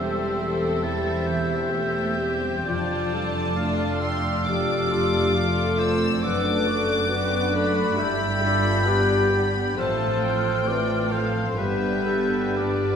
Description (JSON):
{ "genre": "classical, slow romantic movement for symphony orchestra", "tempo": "55-71 BPM", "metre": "4/4", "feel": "rubato", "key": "unclear", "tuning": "A4 = 441 Hz", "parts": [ { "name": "warm studio violin section", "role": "melody", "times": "0.0-13.0 s", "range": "C5 to E6", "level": "-31 LUFS", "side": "left 3 dB", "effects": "none" }, { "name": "clear oboe", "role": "second line", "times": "0.0-13.0 s", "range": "B4 to F5", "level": "-33 LUFS", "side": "right 1 dB", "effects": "none" }, { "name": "concert flute", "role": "second line", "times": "0.0-13.0 s", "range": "D6 to A6", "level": "-31 LUFS", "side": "left 2 dB", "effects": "none" }, { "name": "rich studio violin section", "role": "second line", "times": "0.0-13.0 s", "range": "C4 to E5", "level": "-33 LUFS", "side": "left 3 dB", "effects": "none" }, { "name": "warm clarinet", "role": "second line", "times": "0.0-13.0 s", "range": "E4 to B4", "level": "-32 LUFS", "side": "left 1 dB", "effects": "none" }, { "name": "warm studio viola section", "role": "accompaniment", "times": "0.0-13.0 s", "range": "E3 to F4", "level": "-29 LUFS", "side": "right 2 dB", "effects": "none" }, { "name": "mellow French horn section", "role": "sustained chords", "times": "0.0-13.0 s", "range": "D4 to C5", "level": "-27 LUFS", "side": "left 2 dB", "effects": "none" }, { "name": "concert harp", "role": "arpeggios", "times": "0.0-13.0 s", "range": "E2 to A4", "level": "-33 LUFS", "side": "left 4 dB", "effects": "none" }, { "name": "dark studio cello section", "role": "bass", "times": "0.0-13.0 s", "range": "E2 to A2", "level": "-30 LUFS", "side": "right 2 dB", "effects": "none" }, { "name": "dark studio double bass section", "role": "bass", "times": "0.0-13.0 s", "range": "E1 to A1", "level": "-32 LUFS", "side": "right 2 dB", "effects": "none" } ], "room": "wet recital hall reverb, RT60 1.8 s", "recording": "recorded in a church or concert hall", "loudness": "-21 LUFS", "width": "side -7 dB against mid", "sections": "0.0-13.0 A section", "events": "none", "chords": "0.0 C/E; 2.7 Dm/F; 6.2 D/F#; 8.0 G; 9.8 F/A; 11.6 G" }